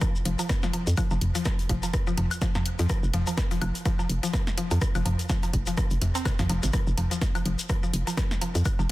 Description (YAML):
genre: minimal techno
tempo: 125 BPM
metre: 4/4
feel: swing 57% on 16ths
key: F minor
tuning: A4 = 438 Hz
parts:
  - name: mallet-like synth pluck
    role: riff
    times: 0.0-8.9 s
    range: C3 to C4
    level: -32 LUFS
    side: left 1 dB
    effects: chorus, vintage 12-bit sampler grit, sidechain pumping, tape echo
  - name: electronic kick drum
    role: drums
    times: 0.0-8.8 s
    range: none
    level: -27 LUFS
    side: equal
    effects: small room ambience
  - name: house drum kit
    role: drums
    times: 0.0-8.9 s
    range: hi-hat, snare drum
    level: -35 LUFS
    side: equal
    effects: small room ambience
  - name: booming analog drum machine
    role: percussion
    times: 0.0-8.9 s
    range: rim click, toms, woodblock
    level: -32 LUFS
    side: left 1 dB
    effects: overdrive, small room ambience, dub echo
  - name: shekere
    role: percussion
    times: 0.0-8.9 s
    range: none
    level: -38 LUFS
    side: left 3 dB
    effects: none
  - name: hollow knocking FM bass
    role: bass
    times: 0.3-8.9 s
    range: F1 to F2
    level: -26 LUFS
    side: equal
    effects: sidechain pumping
room: little or no reverb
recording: dense, heavily limited modern master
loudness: -24 LUFS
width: side -17 dB against mid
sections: 0.0-8.9 A section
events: none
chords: none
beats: 0.01 0.49 | 0.97 1.46 1.94 2.42 | 2.90 3.38 3.85 4.33 | 4.82 5.29 5.78 6.25 | 6.74 7.21 7.70 8.18 | 8.65